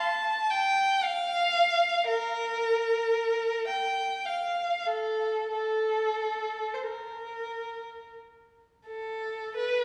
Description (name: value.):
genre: classical, free, expressive piece for unaccompanied violin.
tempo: 37-59 BPM.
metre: 3/4.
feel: rubato.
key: unclear.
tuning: A4 = 439 Hz.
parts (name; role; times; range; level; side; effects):
warm violin; solo; 0.0-9.8 s; A4 to A5; -29 LUFS; equal; none.
room: wet concert hall reverb, RT60 1.8 s.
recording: recorded in a church or concert hall.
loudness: -28 LUFS.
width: mono.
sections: 0.0-9.5 A section.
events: none.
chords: none.